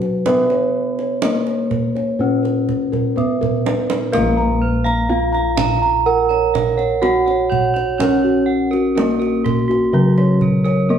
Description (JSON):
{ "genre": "Javanese gamelan", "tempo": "62 BPM", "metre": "4/4", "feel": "straight", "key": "Bb pelog", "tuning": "A4 = 438 Hz", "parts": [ { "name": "gamelan-type bronze metallophone", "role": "melody", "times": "0.0-11.0 s", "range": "Gb3 to Bb4", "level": "-19 LUFS", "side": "equal", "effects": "none" }, { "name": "gamelan-type bossed gongs", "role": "arpeggios", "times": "0.0-11.0 s", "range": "Gb4 to Bb5", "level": "-22 LUFS", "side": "left 1 dB", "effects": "none" }, { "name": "gamelan-type bossed gongs", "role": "bass", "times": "0.0-11.0 s", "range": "Bb1 to Cb5+35c", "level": "-21 LUFS", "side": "right 1 dB", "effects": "none" }, { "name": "kendang", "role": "percussion", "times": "0.0-10.8 s", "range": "none", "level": "-24 LUFS", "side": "right 5 dB", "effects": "none" }, { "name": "gamelan-type bronze metallophone", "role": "arpeggios", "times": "4.1-11.0 s", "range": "Gb4 to Bb5", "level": "-23 LUFS", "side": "right 7 dB", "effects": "none" } ], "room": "wet large studio reverb, RT60 1.4 s", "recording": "band playing live in one room", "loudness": "-15 LUFS", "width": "side -8 dB against mid", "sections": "0.0-4.1 A section; 4.1-11.0 A section", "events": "drum fill 2.9-4.1", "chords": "none", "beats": "| 0.26 1.23 2.19 3.16 | 4.13 5.10 6.07 7.03 | 8.00 8.97 9.94 10.90" }